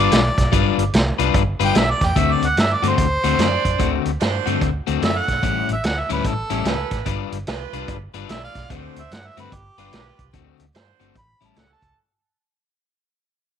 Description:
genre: electric blues shuffle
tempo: 147 BPM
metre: 4/4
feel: swing 64% on 8ths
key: D mixolydian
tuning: A4 = 439 Hz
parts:
  - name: clear harmonica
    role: melody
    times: 0.0-12.0 s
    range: G4 to B5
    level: -23 LUFS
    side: right 1 dB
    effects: overdrive
  - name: electric guitar at the edge of break-up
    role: riff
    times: 0.0-11.6 s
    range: A2 to B4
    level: -22 LUFS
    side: left 14 dB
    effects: none
  - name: vintage muted fingered electric bass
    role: bass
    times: 0.0-11.9 s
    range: G1 to G2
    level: -24 LUFS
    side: right 1 dB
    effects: none
  - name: vintage drum kit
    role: drums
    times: 0.1-11.9 s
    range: hi-hat, kick drum, snare drum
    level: -22 LUFS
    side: right 1 dB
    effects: none
  - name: edgy saxophone section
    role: stabs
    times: 3.2-12.0 s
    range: C#4 to D5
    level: -28 LUFS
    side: right 13 dB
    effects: none
room: light reverb, small room ambience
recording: 1960s-style stereo with parts hard left and right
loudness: -17 LUFS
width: side -8 dB against mid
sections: 0.0-12.0 A section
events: fade-out 0.0-12.0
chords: 0.0 G7; 2.2 D7; 5.4 A7; 7.1 G7; 8.7 D7; 9.5 G7; 10.3 D7; 11.2 A7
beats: 0.12 | 0.53 0.93 1.34 1.75 | 2.16 2.57 2.98 3.39 | 3.80 4.21 4.62 5.02 | 5.43 5.84 6.25 6.66 | 7.07 7.48 7.89 8.29 | 8.70 9.11 9.52 9.93 | 10.34 10.74 11.15 11.56

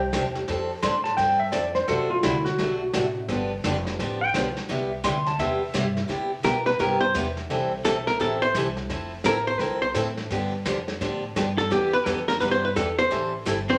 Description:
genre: country, western swing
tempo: 171 BPM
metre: 4/4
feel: swing 64% on 8ths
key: C major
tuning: A4 = 441 Hz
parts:
  - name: clean lap steel guitar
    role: second line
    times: 0.0-6.1 s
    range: E4 to C6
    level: -28 LUFS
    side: equal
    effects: none
  - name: upright bass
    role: bass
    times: 0.0-13.8 s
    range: F1 to C3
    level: -35 LUFS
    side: equal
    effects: none
  - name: picked steel-string acoustic guitar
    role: accompaniment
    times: 0.1-13.6 s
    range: C3 to A4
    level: -30 LUFS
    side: equal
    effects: none
  - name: vintage brush drum kit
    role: drums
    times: 0.1-13.8 s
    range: brushed snare drum, hi-hat, snare drum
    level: -34 LUFS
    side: equal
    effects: none
  - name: archtop guitar, miked and amplified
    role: second line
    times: 6.4-13.8 s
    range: C4 to C5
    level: -25 LUFS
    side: equal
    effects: none
room: wet large studio reverb, RT60 0.8 s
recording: none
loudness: -25 LUFS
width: mono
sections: 0.0-6.1 A section; 6.1-13.8 A section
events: electric slide guitar solo 0.0-6.1; hollow-body jazz guitar solo 6.1-13.8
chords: 0.5 F6; 1.9 D7; 3.3 G7; 4.7 Cmaj9; 6.1 Cmaj7; 7.5 Am7; 8.9 Fmaj7; 10.3 G7; 11.7 Em7; 13.1 Am7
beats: 0.13 | 0.48 0.83 1.18 1.53 | 1.88 2.23 2.58 2.93 | 3.29 3.64 3.99 4.34 | 4.69 5.04 5.39 5.74 | 6.09 6.44 6.79 7.14 | 7.49 7.84 8.20 8.55 | 8.90 9.25 9.60 9.95 | 10.30 10.65 11.00 11.36 | 11.71 12.06 12.41 12.76 | 13.11 13.46

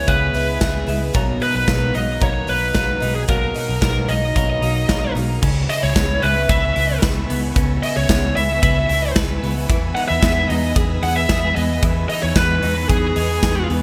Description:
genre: jangly indie pop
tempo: 112 BPM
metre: 4/4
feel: straight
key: C# dorian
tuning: A4 = 440 Hz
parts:
  - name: high-gain lead guitar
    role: melody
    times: 0.0-13.7 s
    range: G#4 to F#5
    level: -24 LUFS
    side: equal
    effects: distortion, digital delay
  - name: picked twelve-string acoustic guitar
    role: accompaniment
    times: 0.0-5.4 s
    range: B2 to E4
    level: -30 LUFS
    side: equal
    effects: none
  - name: twelve-string electric guitar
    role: arpeggios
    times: 0.0-13.8 s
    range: B2 to B4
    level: -27 LUFS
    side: equal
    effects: phaser
  - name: vintage muted fingered electric bass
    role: bass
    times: 0.0-13.8 s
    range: B1 to E2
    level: -25 LUFS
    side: equal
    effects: none
  - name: big rock drum kit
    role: drums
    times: 0.1-13.8 s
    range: crash cymbal, hi-hat, kick drum, ride cymbal, snare drum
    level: -23 LUFS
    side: equal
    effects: gated reverb
  - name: soft string machine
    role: sustained chords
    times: 5.4-13.8 s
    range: B4 to E6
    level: -34 LUFS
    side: equal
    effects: ensemble chorus
room: light reverb, small room ambience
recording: bright 1980s-style digital production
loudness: -18 LUFS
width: mono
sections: 0.0-5.4 A section; 5.4-13.8 B section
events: none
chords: 0.0 C#m7; 1.1 Bmaj7; 5.4 C#m7; 9.7 Emaj7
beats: 0.08 0.62 | 1.15 1.69 2.22 2.75 | 3.29 3.82 4.36 4.89 | 5.43 5.96 6.50 7.03 | 7.56 8.10 8.63 9.16 | 9.70 10.23 10.76 11.30 | 11.83 12.36 12.90 13.43

